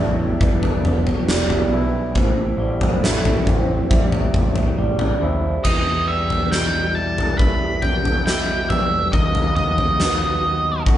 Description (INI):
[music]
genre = post-rock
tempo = 69 BPM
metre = 4/4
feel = straight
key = E harmonic minor from 5.6 s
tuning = A4 = 441 Hz
[part]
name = evolving wavetable pad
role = sustained chords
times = 0.0-11.0 s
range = B2 to G4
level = -29 LUFS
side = right 1 dB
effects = phaser, built-in reverb
[part]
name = electric guitar through a small old amp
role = arpeggios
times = 0.0-11.0 s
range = E2 to F#4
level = -28 LUFS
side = left 1 dB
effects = spring reverb
[part]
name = vibraphone with medium mallets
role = arpeggios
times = 0.0-11.0 s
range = A4 to F#5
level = -30 LUFS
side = right 5 dB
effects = none
[part]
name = growling picked electric bass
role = bass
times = 0.0-11.0 s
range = E1 to E2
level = -24 LUFS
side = equal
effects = overdrive
[part]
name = huge arena drum kit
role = drums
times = 0.4-11.0 s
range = crash cymbal, kick drum, snare drum, toms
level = -19 LUFS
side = equal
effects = none
[part]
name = octave-fuzz lead guitar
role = melody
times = 5.6-10.8 s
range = D#5 to B5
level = -21 LUFS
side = right 1 dB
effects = distortion
[sound]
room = moderate large studio reverb, RT60 1.2 s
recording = band playing live in one room, nothing above 10.7 kHz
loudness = -17 LUFS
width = side -12 dB against mid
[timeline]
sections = 0.0-5.6 A section; 5.6-11.0 B section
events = none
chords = 0.0 Em7; 2.2 Am7; 5.6 Em; 9.1 B/D#